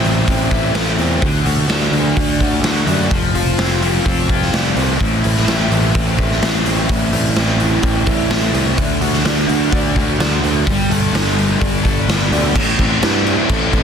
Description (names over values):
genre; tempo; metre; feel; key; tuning
rock, shoegaze and dream pop; 127 BPM; 4/4; straight; A minor; A4 = 442 Hz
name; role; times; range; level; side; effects
fuzz guitar; riff; 0.0-13.8 s; A2 to A4; -17 LUFS; equal; distortion, lush chorus
picked electric bass; bass; 0.0-13.8 s; F1 to G2; -19 LUFS; equal; none
raw garage drum kit; drums; 0.0-13.8 s; crash cymbal, hi-hat, kick drum, snare drum; -18 LUFS; equal; none
room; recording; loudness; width
light reverb, studio reverb; dense, heavily limited modern master; -13 LUFS; side -7 dB against mid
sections
0.0-12.6 A section; 12.6-13.8 B section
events
none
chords
0.0 Am; 1.2 D; 3.1 Fsus2; 5.0 Am; 8.8 D; 10.7 Gadd9; 12.6 Am